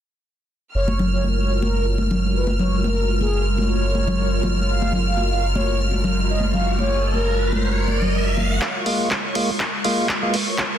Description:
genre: deep house.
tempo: 122 BPM.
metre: 4/4.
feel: swing 55% on 16ths.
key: F# major.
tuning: A4 = 437 Hz.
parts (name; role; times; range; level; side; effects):
mellow horn-like synth lead; melody; 0.7-10.8 s; G#4 to E#5; -28 LUFS; left 1 dB; lush chorus, ping-pong delay.
hollow soft pad; sustained chords; 0.9-10.8 s; G#3 to A#4; -28 LUFS; right 1 dB; ensemble chorus, sidechain pumping.
warm sub bass; bass; 0.7-8.6 s; F#1; -22 LUFS; equal; tube saturation, sidechain pumping.
clear studio violin section; texture; 0.7-10.8 s; C#6 to E#6; -29 LUFS; equal; none.
congas; percussion; 0.9-8.5 s; none; -26 LUFS; left 2 dB; sidechain pumping on perc.
riser; sound effects; 5.5-8.6 s; none; -29 LUFS; right 1 dB; none.
electronic kick drum; drums; 8.6-10.7 s; none; -33 LUFS; equal; high-pass filter on kick, studio ambience.
punchy analog drum machine; drums; 8.6-10.7 s; handclaps, hi-hat; -23 LUFS; equal; low-pass filter on snare, studio ambience, low-pass filter on hats.
percussive tonewheel organ; stabs; 8.9-10.4 s; G#3 to E#4; -22 LUFS; equal; overdrive, stopped rotary speaker, sidechain pumping, low-pass filter, dub echo.
room: light reverb, digital ambience.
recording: dense, heavily limited modern master.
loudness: -18 LUFS.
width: side -10 dB against mid.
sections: 0.7-8.6 A section; 8.6-10.8 B section.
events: riser 5.5-8.6; build-up 8.6-10.8; drum fill 8.6-10.8; filter sweep on tonewheel organ 8.6-10.8.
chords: 0.7 F#maj9.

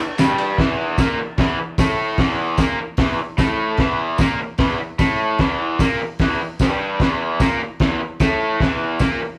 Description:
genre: garage rock duo or trio.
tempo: 150 BPM.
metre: 4/4.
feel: straight.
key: E minor.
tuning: A4 = 438 Hz.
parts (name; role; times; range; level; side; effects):
raw garage guitar; riff; 0.2-9.4 s; E2 to A#3; -22 LUFS; equal; overdrive.
cloth-damped thuddy drum kit; drums; 0.2-9.1 s; hi-hat, kick drum, ride cymbal, snare drum; -22 LUFS; equal; none.
tambourine; percussion; 0.2-9.1 s; none; -41 LUFS; equal; none.
room: light reverb.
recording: band playing live in one room.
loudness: -19 LUFS.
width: mono.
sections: 0.6-9.4 A section.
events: none.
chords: none.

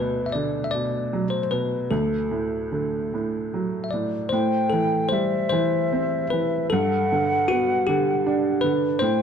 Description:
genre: celtic folk, Celtic slow air.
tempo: 50 BPM (dotted quarters).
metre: 6/8.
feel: rubato.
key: A dorian.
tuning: A4 = 441 Hz.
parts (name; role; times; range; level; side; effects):
bell-like tine electric piano; melody; 0.0-9.2 s; F#4 to E5; -25 LUFS; left 5 dB; none.
warm upright piano; accompaniment; 0.0-9.2 s; D2 to D4; -24 LUFS; right 4 dB; none.
wooden flute; second line; 4.3-9.2 s; E5 to G5; -26 LUFS; right 1 dB; none.
room: light reverb.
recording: dark, warm production.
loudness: -21 LUFS.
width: side -7 dB against mid.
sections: 0.0-4.3 A section; 4.3-9.2 A section.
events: none.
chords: 0.0 Bm/D; 1.9 D; 4.3 Am7; 6.7 Gadd9.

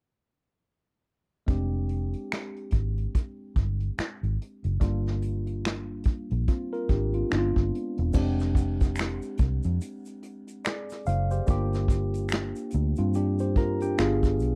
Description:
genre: R&B, neo-soul.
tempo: 72 BPM.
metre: 4/4.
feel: swing 59% on 16ths.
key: F dorian.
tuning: A4 = 440 Hz.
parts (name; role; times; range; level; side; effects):
barky tine electric piano; accompaniment; 1.5-14.6 s; G3 to Bb5; -33 LUFS; equal; phaser.
vintage muted fingered electric bass; bass; 1.5-14.6 s; E1 to G2; -30 LUFS; equal; none.
vintage brush drum kit; drums; 1.5-14.6 s; crash cymbal, finger snaps, hi-hat, kick drum, snare drum; -28 LUFS; equal; none.
egg shaker and finger snaps; percussion; 8.1-14.6 s; none; -48 LUFS; equal; none.
room: little or no reverb.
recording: dry, close 1970s-style studio recording.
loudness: -28 LUFS.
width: mono.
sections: 1.5-8.1 A section; 8.1-14.6 B section.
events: tine electric piano fill 13.1-14.6.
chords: 1.5 Fm69; 4.8 Gm7; 7.3 G7b9; 8.1 Fm69; 11.5 Gm7; 14.0 G7b9.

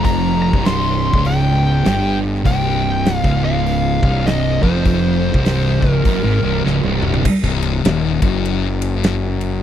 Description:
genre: stoner and doom metal.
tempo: 100 BPM.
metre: 4/4.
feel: swing 62% on 8ths.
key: unclear.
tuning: A4 = 440 Hz.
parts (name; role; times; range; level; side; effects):
fuzz lead guitar; melody; 0.0-6.6 s; C5 to C6; -22 LUFS; left 3 dB; distortion, tape echo.
thick fuzz guitar; riff; 0.0-9.6 s; C2 to Ab2; -20 LUFS; left 8 dB; distortion.
thick fuzz guitar; riff; 0.0-7.2 s; C2 to Ab2; -19 LUFS; right 9 dB; distortion.
fuzz fingered electric bass; bass; 0.0-9.6 s; C1 to Ab1; -20 LUFS; equal; overdrive.
big rock drum kit; drums; 0.0-9.5 s; crash cymbal, hi-hat, kick drum, ride cymbal, snare drum, toms; -19 LUFS; equal; none.
room: little or no reverb.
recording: dry, close 1970s-style studio recording.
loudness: -14 LUFS.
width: side -10 dB against mid.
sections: 0.0-7.2 A section; 7.2-9.6 B section.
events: drum fill 6.7-7.2.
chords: 0.0 C5; 7.2 Cm.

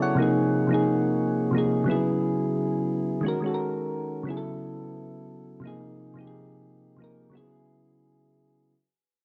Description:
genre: hip hop.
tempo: 88 BPM.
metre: 4/4.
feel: swing 55% on 16ths.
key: unclear.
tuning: A4 = 440 Hz.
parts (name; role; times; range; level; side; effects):
soft electric-piano-like synth keys; solo; 0.0-8.7 s; B#2 to F#5; -27 LUFS; equal; chorus.
room: moderate spring reverb, RT60 1.3 s.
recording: home recording on cassette.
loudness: -26 LUFS.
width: mono.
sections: 0.0-8.7 A section.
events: fade-out 0.0-8.7.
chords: 0.2 A#5; 1.9 F#5; 3.2 G#5; 4.3 B5; 5.6 A#5; 7.3 F#5.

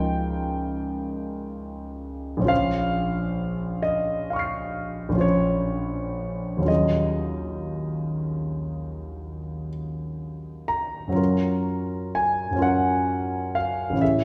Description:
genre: classical, impressionist solo piano.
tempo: 39-45 BPM (dotted quarters).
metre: 9/8.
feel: rubato.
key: unclear.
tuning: A4 = 440 Hz.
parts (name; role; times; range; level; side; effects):
warm concert grand piano; solo; 0.0-14.2 s; A1 to C7; -26 LUFS; equal; none.
room: wet recital hall reverb, RT60 1.4 s.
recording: heard from further back in the room.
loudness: -26 LUFS.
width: mono.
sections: 0.0-14.2 A section.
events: none.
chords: 0.0 Eb9/Db; 2.5 Bbmadd9; 6.7 Ebm11; 11.2 Gbmaj7.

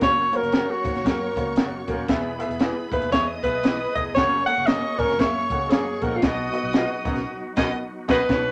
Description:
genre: uptempo 1960s-style soul.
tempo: 116 BPM.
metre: 4/4.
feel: swing 60% on 8ths.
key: B major.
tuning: A4 = 444 Hz.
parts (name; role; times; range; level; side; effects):
breathy alto saxophone; melody; 0.0-8.5 s; E#4 to F#5; -26 LUFS; equal; none.
rich studio violin section; second line; 0.0-8.2 s; B4 to D#6; -35 LUFS; equal; none.
warm upright piano; accompaniment; 0.0-8.5 s; B2 to G#5; -33 LUFS; equal; none.
bright tonewheel organ; sustained chords; 0.0-8.5 s; F#3 to G#4; -39 LUFS; equal; none.
warm baritone saxophone; riff; 0.0-8.5 s; D#2 to B2; -35 LUFS; equal; none.
vintage muted fingered electric bass; bass; 0.0-8.5 s; D#1 to F#2; -39 LUFS; equal; none.
compact cocktail drum kit; drums; 0.0-8.4 s; crash cymbal, hi-hat, kick drum, snare drum; -26 LUFS; equal; vintage 12-bit sampler grit.
electric guitar through a small old amp; stabs; 0.5-8.2 s; C#4 to D#5; -35 LUFS; equal; none.
room: wet small room reverb, RT60 0.5 s.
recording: none.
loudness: -23 LUFS.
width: mono.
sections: 0.0-8.3 A section.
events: alto saxophone solo 0.0-8.3; band accent 7.3-8.3.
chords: 0.0 F#; 2.1 E; 4.2 F#add9; 6.2 B.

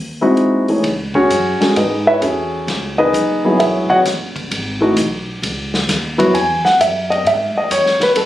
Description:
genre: modal jazz.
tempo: 131 BPM.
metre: 4/4.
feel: swing 67% on 8ths.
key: C# minor.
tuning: A4 = 439 Hz.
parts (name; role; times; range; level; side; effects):
upright bass; bass; 0.0-8.3 s; E1 to G#2; -26 LUFS; equal; none.
warm grand piano; accompaniment; 0.2-8.3 s; E3 to G#5; -13 LUFS; equal; none.
vintage drum kit; drums; 0.4-8.3 s; hi-hat, kick drum, ride cymbal, snare drum; -23 LUFS; left 1 dB; none.
room: light reverb.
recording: recorded on a phone in the room, club reverb.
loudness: -13 LUFS.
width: side -13 dB against mid.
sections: 0.8-8.3 A section.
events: none.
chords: 0.0 G#7b13; 0.8 C#m11.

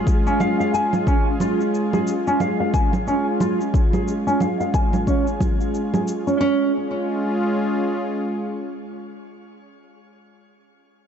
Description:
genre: organic downtempo.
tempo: 90 BPM.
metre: 4/4.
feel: swing 59% on 16ths.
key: C# major.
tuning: A4 = 443 Hz.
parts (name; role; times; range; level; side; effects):
warm analog pad; sustained chords; 0.0-9.8 s; G#3 to G#4; -24 LUFS; equal; chorus, sidechain pumping, shimmer reverb.
nylon-string guitar; arpeggios; 0.0-6.7 s; C#4 to G#5; -23 LUFS; right 1 dB; low-pass filter, tape echo, shimmer reverb.
electronic kick drum; drums; 0.1-5.6 s; none; -20 LUFS; left 1 dB; none.
shaker and congas; drums; 0.1-6.4 s; none; -26 LUFS; right 2 dB; none.
room: light reverb.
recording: nothing above 7.9 kHz.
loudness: -18 LUFS.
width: side -8 dB against mid.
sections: 0.0-6.4 A section; 6.4-9.1 B section.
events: filter sweep on nylon-string guitar 0.0-6.4.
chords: 0.0 C#.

